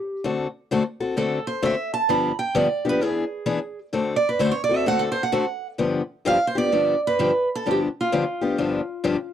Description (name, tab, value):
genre	jazz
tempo	130 BPM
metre	4/4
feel	swing 64% on 8ths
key	G mixolydian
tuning	A4 = 440 Hz
part	picked steel-string acoustic guitar	melody	0.0-9.3 s	F4 to B5	-23 LUFS	right 3 dB	none
part	picked steel-string acoustic guitar	accompaniment	0.2-9.2 s	G2 to A4	-22 LUFS	left 4 dB	none
room	little or no reverb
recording	dry, close 1970s-style studio recording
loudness	-21 LUFS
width	side -9 dB against mid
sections	0.0-5.8 A section; 5.8-9.3 B section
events	steel-string acoustic guitar solo 0.0-5.8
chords	0.2 D7; 2.1 G7; 3.0 E7; 3.9 D7; 5.8 G7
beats	| 0.24 0.70 1.16 1.62 | 2.09 2.55 3.01 3.47 | 3.94 4.40 4.86 5.33 | 5.79 6.25 6.72 7.18 | 7.64 8.11 8.57 9.04